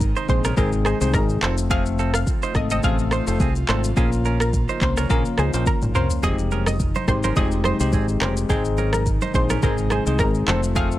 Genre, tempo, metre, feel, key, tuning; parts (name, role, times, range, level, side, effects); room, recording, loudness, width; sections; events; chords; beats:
afrobeats; 106 BPM; 4/4; swing 55% on 16ths; F minor; A4 = 441 Hz
analog pluck; melody; 0.0-10.9 s; Ab4 to F5; -28 LUFS; equal; chorus, digital delay
airy breathy pad; sustained chords; 0.0-11.0 s; C3 to F4; -31 LUFS; right 1 dB; chorus
deep dub fingered electric bass; bass; 0.0-11.0 s; F1 to Db2; -23 LUFS; equal
afro-pop drum kit; drums; 0.0-11.0 s; handclaps, kick drum, rim click, shaker, toms; -23 LUFS; equal; vintage 12-bit sampler grit
direct-recorded clean electric guitar; riff; 0.2-10.9 s; C4 to C5; -29 LUFS; right 7 dB; digital delay
bell-like tine electric piano; accompaniment; 0.3-11.0 s; Ab3 to Bb4; -26 LUFS; left 5 dB
congas; percussion; 6.2-10.9 s; -32 LUFS; right 2 dB
little or no reverb; -18 LUFS; side -14 dB against mid
0.0-11.0 A section
drum fill 5.7-6.2
0.0 Ab; 1.4 F; 4.0 Bbm; 6.2 Fm7; 8.5 Ab; 10.5 F
0.00 0.57 1.14 | 1.70 2.27 2.83 3.40 | 3.97 4.53 5.10 5.67 | 6.23 6.80 7.36 7.93 | 8.49 9.06 9.63 10.19 | 10.76